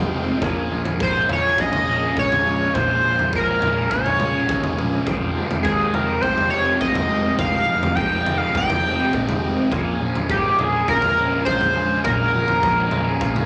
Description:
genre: psychedelic rock.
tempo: 103 BPM.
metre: 4/4.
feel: straight.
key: unclear.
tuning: A4 = 440 Hz.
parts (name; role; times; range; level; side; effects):
overdriven tonewheel organ; sustained chords; 0.0-13.5 s; Ab3 to G5; -32 LUFS; equal; fast rotary speaker.
fuzz guitar; riff; 0.0-13.5 s; F2 to Ab4; -26 LUFS; equal; distortion, phaser.
fuzz picked electric bass; bass; 0.0-13.4 s; F1 to Eb2; -30 LUFS; equal; overdrive.
raw garage drum kit; drums; 0.4-13.5 s; kick drum, toms; -29 LUFS; equal; none.
sync lead; melody; 1.0-13.5 s; G4 to G5; -22 LUFS; equal; chorus.
room: wet large studio reverb, RT60 1.3 s.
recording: tube saturation.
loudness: -20 LUFS.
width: mono.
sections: 0.0-13.5 A section.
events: none.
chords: 0.4 Bbm7; 5.1 Fmadd9; 9.7 Bbm7.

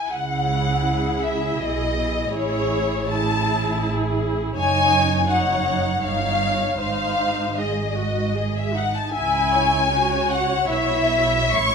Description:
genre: classical, slow romantic movement for string orchestra.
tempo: 70-83 BPM.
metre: 3/4.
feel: rubato.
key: C# minor.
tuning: A4 = 438 Hz.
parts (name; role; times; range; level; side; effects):
rich studio violin section; melody; 0.0-11.7 s; C#5 to C#6; -29 LUFS; left 5 dB; none.
warm studio violin section; second line; 0.0-11.7 s; E4 to C#6; -22 LUFS; left 3 dB; none.
warm studio viola section; accompaniment; 0.1-11.7 s; D#4 to E5; -25 LUFS; right 1 dB; none.
warm studio cello section; bass; 0.1-11.7 s; F#2 to C#3; -28 LUFS; right 4 dB; none.
warm studio double bass section; bass; 0.1-11.7 s; F#1 to C#2; -28 LUFS; right 4 dB; none.
room: moderate recital hall reverb, RT60 1.8 s.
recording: minimal, uncompressed stereo recording.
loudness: -19 LUFS.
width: side -6 dB against mid.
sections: 0.1-11.7 A section.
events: none.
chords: 0.1 C#m; 2.3 Amaj7; 4.6 G#7sus4/F#; 6.0 D#7/G; 6.8 G#; 9.2 C#m.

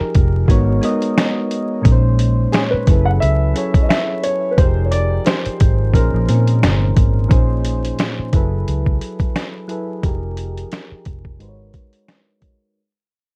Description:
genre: lo-fi hip hop.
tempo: 88 BPM.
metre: 4/4.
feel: swing 55% on 16ths.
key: unclear.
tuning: A4 = 438 Hz.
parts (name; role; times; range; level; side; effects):
dark upright piano; melody; 0.0-6.9 s; Ab4 to Gb5; -25 LUFS; equal; low-pass filter.
soft electric-piano-like synth keys; accompaniment; 0.0-12.8 s; Bb2 to Eb5; -24 LUFS; equal; chorus, low-pass filter.
vintage muted fingered electric bass; bass; 0.0-11.7 s; F1 to Bb2; -19 LUFS; equal; none.
lo-fi sampler-style drum kit; drums; 0.1-12.6 s; finger snaps, hi-hat, kick drum, snare drum; -18 LUFS; equal; none.
room: light reverb.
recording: vinyl crackle.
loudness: -16 LUFS.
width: mono.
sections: 0.0-7.3 A section; 7.3-12.8 B section.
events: fade-out 7.3-12.8; filter sweep on synth keys 7.3-12.8.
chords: 0.5 Abm11; 1.9 Bbm11; 2.9 Gbm11; 4.6 Fm11; 5.9 Bbm11; 8.3 Gbm11; 10.0 Fm11; 11.4 Abm11.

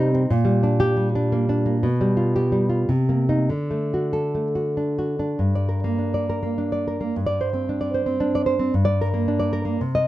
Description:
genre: romantic piece for solo classical guitar.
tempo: 94-126 BPM.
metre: 3/4.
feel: rubato.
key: G minor.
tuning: A4 = 438 Hz.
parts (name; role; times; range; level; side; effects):
nylon-string guitar; solo; 0.0-10.1 s; G2 to Eb5; -20 LUFS; equal; none.
room: light reverb.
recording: dry, close 1970s-style studio recording.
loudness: -20 LUFS.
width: side -15 dB against mid.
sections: 0.0-5.4 A section; 5.4-10.1 B section.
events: none.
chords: 0.3 Gm/Bb; 1.9 G7/B; 2.9 Cm7; 3.5 D; 5.4 Gm; 7.2 Gsus4; 8.7 Gm.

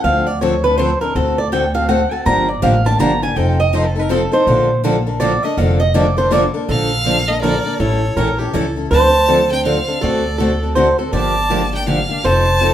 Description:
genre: acoustic string swing (jazz manouche).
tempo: 162 BPM.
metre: 3/4.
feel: swing 61% on 8ths.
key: Bb major.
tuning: A4 = 440 Hz.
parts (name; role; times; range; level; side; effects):
picked swing-style acoustic guitar; second line; 0.0-12.7 s; G4 to Bb5; -18 LUFS; right 2 dB; none.
picked steel-string acoustic guitar; accompaniment; 0.0-12.7 s; D3 to A4; -20 LUFS; left 4 dB; none.
upright bass; bass; 0.0-12.7 s; F1 to D2; -19 LUFS; equal; none.
picked steel-string acoustic guitar; accompaniment; 2.3-12.7 s; D3 to A4; -21 LUFS; right 3 dB; none.
clear violin; melody; 6.7-12.7 s; C#5 to A5; -20 LUFS; equal; none.
room: wet club reverb, RT60 0.8 s.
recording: heard from further back in the room.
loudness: -13 LUFS.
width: side -11 dB against mid.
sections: 0.0-6.7 A section; 6.7-12.7 B section.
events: steel-string acoustic guitar solo 0.0-6.7.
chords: 0.1 Dm7; 1.2 D7; 2.3 Gm7; 3.4 F7; 4.5 Bbmaj7; 7.8 A7b9; 8.9 Dm7; 10.0 D7; 11.1 Gm7.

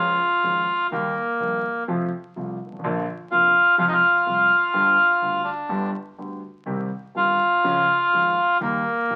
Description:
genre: tango.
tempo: 125 BPM.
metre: 4/4.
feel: rubato.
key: unclear.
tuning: A4 = 441 Hz.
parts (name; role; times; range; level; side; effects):
bandoneon; melody; 0.0-9.2 s; Bb3 to F4; -20 LUFS; equal; none.
dark concert grand piano; accompaniment; 0.0-9.2 s; F1 to Ab4; -31 LUFS; equal; none.
room: wet studio reverb, RT60 0.7 s.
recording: very old 78 rpm record, vinyl crackle.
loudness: -21 LUFS.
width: mono.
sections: 0.0-9.2 A section.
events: none.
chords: 0.0 Db; 0.9 Eb; 1.9 F; 2.8 Bb; 3.8 Fm; 4.7 G; 6.7 Cm; 7.7 Db; 8.6 Eb.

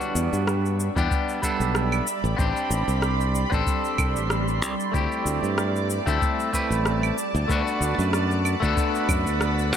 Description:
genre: sunset chillout.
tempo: 94 BPM.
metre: 4/4.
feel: swing 54% on 16ths.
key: E minor.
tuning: A4 = 440 Hz.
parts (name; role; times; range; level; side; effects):
clean electric guitar; accompaniment; 0.0-9.8 s; G3 to B4; -26 LUFS; moving between left 5 dB and right 3 dB; auto-pan, tape echo.
shimmering ambient pad; sustained chords; 0.0-9.8 s; G3 to C6; -29 LUFS; right 2 dB; chorus, built-in reverb.
electronic shaker, rim click and claves; drums; 0.0-9.8 s; none; -31 LUFS; equal; none.
modern bright fingered electric bass; bass; 0.2-9.8 s; A1 to G2; -25 LUFS; equal; none.
electronic kick drum; drums; 1.0-9.2 s; none; -26 LUFS; equal; none.
room: light reverb, digital ambience.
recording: none.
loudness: -21 LUFS.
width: side -9 dB against mid.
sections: 0.0-9.8 A section.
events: none.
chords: 0.0 Em7; 2.1 Am11; 4.9 D7sus4; 7.2 Bm7/D.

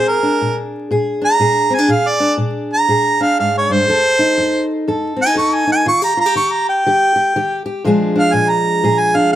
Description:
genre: acoustic country blues, solo or duo.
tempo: 121 BPM.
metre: 4/4.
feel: swing 61% on 8ths.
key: Bb mixolydian.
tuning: A4 = 439 Hz.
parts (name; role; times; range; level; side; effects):
warm harmonica; melody; 0.0-9.4 s; Bb4 to Db6; -14 LUFS; right 2 dB; plate reverb.
fingerpicked steel-string acoustic guitar; accompaniment; 0.0-9.4 s; F2 to A4; -17 LUFS; left 1 dB; none.
room: light reverb.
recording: vinyl crackle.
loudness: -13 LUFS.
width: side -12 dB against mid.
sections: 0.0-9.4 A section.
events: harmonica solo 0.0-9.4.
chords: 0.0 Bb7; 3.9 F7; 5.9 Eb; 7.8 Bb7.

